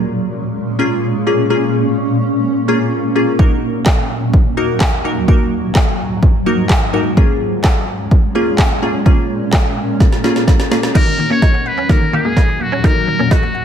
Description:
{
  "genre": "dance-pop",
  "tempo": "127 BPM",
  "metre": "4/4",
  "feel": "straight",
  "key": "Eb minor",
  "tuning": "A4 = 440 Hz",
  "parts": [
    { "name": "glassy wavetable pluck", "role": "accompaniment", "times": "0.0-13.4 s", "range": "Bb3 to Bb4", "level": "-19 LUFS", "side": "left 1 dB", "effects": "chorus, sidechain pumping, slapback echo" },
    { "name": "granular cloud pad", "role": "sustained chords", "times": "0.0-13.6 s", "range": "Eb2 to Db4", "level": "-19 LUFS", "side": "equal", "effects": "built-in reverb, sidechain pumping" },
    { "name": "deep house drum kit", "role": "drums", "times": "3.4-13.4 s", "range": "crash cymbal, handclaps, kick drum, snare drum", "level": "-13 LUFS", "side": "equal", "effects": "none" },
    { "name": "wide unison pluck", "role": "arpeggios", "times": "10.9-13.6 s", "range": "Eb3 to Gb5", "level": "-22 LUFS", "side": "left 2 dB", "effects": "phaser, sidechain pumping" },
    { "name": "trumpet with metal mute", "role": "melody", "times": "11.0-13.6 s", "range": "Gb4 to Db5", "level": "-18 LUFS", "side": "left 2 dB", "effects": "none" },
    { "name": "direct-recorded clean electric guitar", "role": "riff", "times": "11.0-13.5 s", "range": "Ab3 to Eb4", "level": "-24 LUFS", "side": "right 7 dB", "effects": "ensemble chorus, slapback echo" }
  ],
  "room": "moderate lush hall reverb, RT60 2.3 s",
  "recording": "big arena sound",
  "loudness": "-12 LUFS",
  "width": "side -8 dB against mid",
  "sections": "0.0-11.0 A section; 11.0-13.6 B section",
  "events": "drum fill 10.0-11.0, 11.0-13.6; build-up 11.0-13.6",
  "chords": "0.0 Bbm7; 3.4 Ebm; 7.2 Bbm7; 11.0 Ebm",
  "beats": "0.09 0.56 1.03 | 1.50 1.98 2.45 2.92 | 3.39 3.86 4.34 4.81 | 5.28 5.75 6.23 6.70 | 7.17 7.64 8.12 8.59 | 9.06 9.53 10.01 10.48 | 10.95 11.42 11.90 12.37 | 12.84 13.31"
}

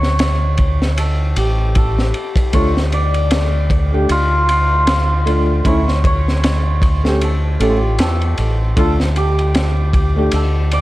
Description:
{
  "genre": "trip hop",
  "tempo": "77 BPM",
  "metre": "4/4",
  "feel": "swing 57% on 16ths",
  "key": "D harmonic minor",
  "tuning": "A4 = 437 Hz",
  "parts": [
    { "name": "hammered dulcimer", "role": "melody", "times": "0.0-10.8 s", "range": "F4 to D5", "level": "-21 LUFS", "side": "equal", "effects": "tape echo" },
    { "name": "growling fingered electric bass", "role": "bass", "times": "0.0-10.8 s", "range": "A1 to E2", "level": "-16 LUFS", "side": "equal", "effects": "overdrive" },
    { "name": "crunchy breakbeat drum kit", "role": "drums", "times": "0.0-10.8 s", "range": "kick drum, ride cymbal, snare drum", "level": "-19 LUFS", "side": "equal", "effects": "none" },
    { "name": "felt-muted upright piano", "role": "accompaniment", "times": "2.5-10.4 s", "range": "A3 to A4", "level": "-21 LUFS", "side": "equal", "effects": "tremolo, tape echo" }
  ],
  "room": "studio reverb",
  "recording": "dark, warm production",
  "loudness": "-13 LUFS",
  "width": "side -17 dB against mid",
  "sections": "0.0-10.8 A section",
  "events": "none",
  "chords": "0.0 A/D; 2.5 Dm; 5.7 A/D; 8.8 Dm",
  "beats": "0.20 0.98 1.75 | 2.54 3.31 4.09 4.87 | 5.65 6.43 7.21 7.99 | 8.77 9.55 10.33"
}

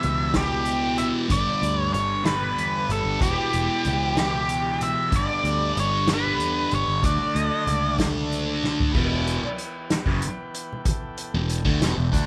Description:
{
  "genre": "psychedelic rock",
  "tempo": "63 BPM (dotted quarters)",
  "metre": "6/8",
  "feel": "straight",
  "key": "E minor from 8.9 s",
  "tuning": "A4 = 442 Hz",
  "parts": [
    { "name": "octave-fuzz lead guitar", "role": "melody", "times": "0.0-8.0 s", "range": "G4 to E5", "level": "-27 LUFS", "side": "equal", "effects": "wah, distortion, slapback echo" },
    { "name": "overdriven combo organ", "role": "sustained chords", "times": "0.0-12.3 s", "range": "E3 to G5", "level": "-40 LUFS", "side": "equal", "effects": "none" },
    { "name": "thick fuzz guitar", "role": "riff", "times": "0.0-12.3 s", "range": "E2 to D4", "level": "-28 LUFS", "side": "equal", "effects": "distortion, phaser" },
    { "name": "fingered electric bass", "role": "bass", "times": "0.0-12.3 s", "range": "E1 to E2", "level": "-30 LUFS", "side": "equal", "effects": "none" },
    { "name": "soft-mallet drum kit", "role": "drums", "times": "0.0-12.3 s", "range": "crash cymbal, hi-hat, kick drum, snare drum, toms", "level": "-29 LUFS", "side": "equal", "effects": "none" },
    { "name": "congas", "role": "percussion", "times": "0.0-12.3 s", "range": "none", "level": "-39 LUFS", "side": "equal", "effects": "none" }
  ],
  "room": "small room reverb",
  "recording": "none",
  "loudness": "-24 LUFS",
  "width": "mono",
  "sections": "0.0-8.9 A section; 8.9-12.3 B section",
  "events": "drum fill 8.6-8.9",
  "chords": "0.0 Em; 1.3 G; 3.2 Em; 5.1 G; 7.0 D; 8.9 Em",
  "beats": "0.35 | 1.31 2.26 | 3.22 4.17 | 5.13 6.08 | 7.04 7.99 | 8.95 9.90 | 10.85 11.80"
}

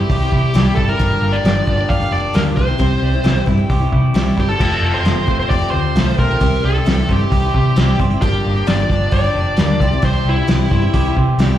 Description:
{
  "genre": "folk rock and heartland rock",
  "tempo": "133 BPM",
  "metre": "4/4",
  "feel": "straight",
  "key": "unclear",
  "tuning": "A4 = 440 Hz",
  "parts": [
    { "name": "dark smooth lead guitar", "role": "melody", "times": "0.0-11.1 s", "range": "E4 to F5", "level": "-21 LUFS", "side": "equal", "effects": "overdrive, slapback echo" },
    { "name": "picked steel-string acoustic guitar", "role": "accompaniment", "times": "0.0-11.6 s", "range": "G2 to G4", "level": "-23 LUFS", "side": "left 3 dB", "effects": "slapback echo" },
    { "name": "electric guitar through a small old amp", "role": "riff", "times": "0.0-11.6 s", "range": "G2 to G4", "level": "-24 LUFS", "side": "right 1 dB", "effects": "slapback echo" },
    { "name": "hollow-body short-scale fingered electric bass", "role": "bass", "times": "0.0-11.5 s", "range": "F1 to C3", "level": "-17 LUFS", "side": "equal", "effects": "none" },
    { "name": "cloth-damped thuddy drum kit", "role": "drums", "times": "0.1-11.5 s", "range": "crash cymbal, hi-hat, kick drum, snare drum", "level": "-18 LUFS", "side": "equal", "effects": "none" }
  ],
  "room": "small room reverb",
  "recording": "live gig heard through the venue's PA, club reverb",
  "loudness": "-13 LUFS",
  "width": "side -12 dB against mid",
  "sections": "0.0-4.6 A section; 4.6-11.6 A section",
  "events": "none",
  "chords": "0.0 C; 1.0 Gm7; 2.6 C; 4.6 Fadd9; 6.4 C; 8.2 Gm7; 9.8 C",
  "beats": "0.09 0.54 | 0.99 1.44 1.89 2.34 | 2.79 3.25 3.70 4.15 | 4.60 5.05 5.50 5.96 | 6.41 6.86 7.31 7.77 | 8.22 8.67 9.12 9.58 | 10.03 10.48 10.94 11.39"
}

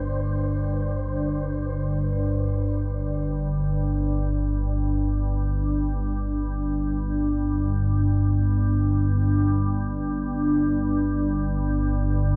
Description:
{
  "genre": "dark ambient drone",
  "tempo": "free time",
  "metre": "none",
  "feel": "none",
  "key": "unclear",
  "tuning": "A4 = 441 Hz",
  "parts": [
    { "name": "organ-like drone", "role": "drone", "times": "0.0-12.4 s", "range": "G1 to G2", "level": "-24 LUFS", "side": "equal", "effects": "ensemble chorus, built-in reverb" },
    { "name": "wind-like tuned noise texture", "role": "texture", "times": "0.0-1.4 s", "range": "C5", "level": "-41 LUFS", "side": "equal", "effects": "built-in reverb, shimmer reverb" }
  ],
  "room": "wet huge ambient reverb, RT60 8.9 s",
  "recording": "none",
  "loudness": "-24 LUFS",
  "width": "mono",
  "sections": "0.0-1.4 A section; 1.4-12.4 B section",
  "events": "none",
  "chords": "0.0 Gsus4; 1.4 N.C.",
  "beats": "free time"
}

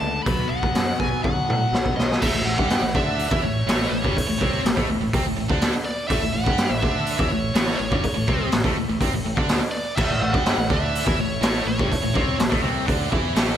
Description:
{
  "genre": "quiet-loud alternative rock",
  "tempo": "124 BPM",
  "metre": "4/4",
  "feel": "straight",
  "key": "A major",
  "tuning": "A4 = 440 Hz",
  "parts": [
    { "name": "bluesy overdriven lead guitar", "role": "melody", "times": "0.0-12.4 s", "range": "C#5 to B5", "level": "-27 LUFS", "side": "right 1 dB", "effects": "distortion, slapback echo" },
    { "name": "semi-hollow electric guitar", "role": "arpeggios", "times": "0.0-2.2 s", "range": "B2 to B3", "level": "-31 LUFS", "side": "right 1 dB", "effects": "slapback echo, tape echo" },
    { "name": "overdriven electric guitar", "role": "riff", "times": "0.0-13.6 s", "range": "G2 to G4", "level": "-28 LUFS", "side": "left 9 dB", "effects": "phaser, slapback echo" },
    { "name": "fingered electric bass", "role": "bass", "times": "0.0-13.6 s", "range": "G1 to A2", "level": "-29 LUFS", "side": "equal", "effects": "none" },
    { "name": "raw garage drum kit", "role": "drums", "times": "0.3-13.5 s", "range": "crash cymbal, hi-hat, kick drum, snare drum, toms", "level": "-22 LUFS", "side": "equal", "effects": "none" },
    { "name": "tight distorted guitar", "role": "riff", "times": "2.2-13.6 s", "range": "G2 to G4", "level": "-28 LUFS", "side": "right 10 dB", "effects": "distortion, slapback echo" },
    { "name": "overdriven tonewheel organ", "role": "sustained chords", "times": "10.0-13.6 s", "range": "A3 to E5", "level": "-36 LUFS", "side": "right 1 dB", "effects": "none" }
  ],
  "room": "light reverb, small room ambience",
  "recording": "none",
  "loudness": "-19 LUFS",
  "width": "side -10 dB against mid",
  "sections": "0.0-2.2 A section; 2.2-13.6 B section",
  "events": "drum fill 1.2-2.2",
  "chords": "0.3 B5; 2.2 A",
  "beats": "| 0.26 0.74 1.23 1.72 | 2.21 2.69 3.18 3.67 | 4.15 4.64 5.13 5.61 | 6.10 6.58 7.07 7.55 | 8.04 8.52 9.00 9.49 | 9.97 10.45 10.94 11.42 | 11.90 12.39 12.87 13.35"
}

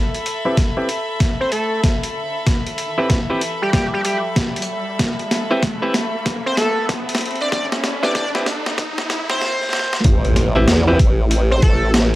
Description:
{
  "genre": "glitch hop",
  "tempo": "95 BPM",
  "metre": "4/4",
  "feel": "swing 63% on 16ths",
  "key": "A minor",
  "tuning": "A4 = 443 Hz",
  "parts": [
    { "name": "riser and impact", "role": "sound effects", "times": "2.0-12.2 s", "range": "none", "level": "-27 LUFS", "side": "equal", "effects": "none" },
    { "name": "clear studio string section", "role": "texture", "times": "0.0-9.4 s", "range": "A4 to B5", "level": "-26 LUFS", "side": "left 1 dB", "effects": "sidechain pumping" },
    { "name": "boom bap sampler-style drum kit", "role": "drums", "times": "0.1-12.1 s", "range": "hi-hat, snare drum", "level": "-22 LUFS", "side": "equal", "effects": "none" },
    { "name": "electric guitar at the edge of break-up", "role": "stabs", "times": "0.5-11.0 s", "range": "C4 to B4", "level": "-20 LUFS", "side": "equal", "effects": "sidechain pumping, low-pass filter, analog delay" },
    { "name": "electronic kick drum", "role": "drums", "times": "0.6-11.8 s", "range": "none", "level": "-18 LUFS", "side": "equal", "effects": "none" },
    { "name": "sync lead", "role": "melody", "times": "1.4-11.9 s", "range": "G4 to D5", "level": "-22 LUFS", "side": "equal", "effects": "chorus, vintage 12-bit sampler grit, analog delay" },
    { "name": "formant-sweep wobble bass", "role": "bass", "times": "10.0-12.2 s", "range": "A1 to E2", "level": "-16 LUFS", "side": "equal", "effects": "chorus, tube saturation" }
  ],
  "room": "little or no reverb",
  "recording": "dry, gritty hardware recording, vinyl crackle, high-pass filter",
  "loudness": "-16 LUFS",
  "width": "side -17 dB against mid",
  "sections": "0.0-10.0 A section; 10.0-12.2 B section",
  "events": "build-up 0.0-10.0; drum fill 0.0-9.4, 9.4-10.0; filter sweep on clean electric guitar 0.0-10.0; filter sweep 0.0-10.0; riser 2.0-9.4; drop 10.0-12.2; impact 10.0-12.2",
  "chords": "0.0 Asus2; 10.0 A5",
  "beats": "0.57 1.21 1.84 | 2.47 3.10 3.73 4.36 | 5.00 5.63 6.26 6.89 | 7.52 8.15 8.79 9.42 | 10.05 10.68 11.31 11.94"
}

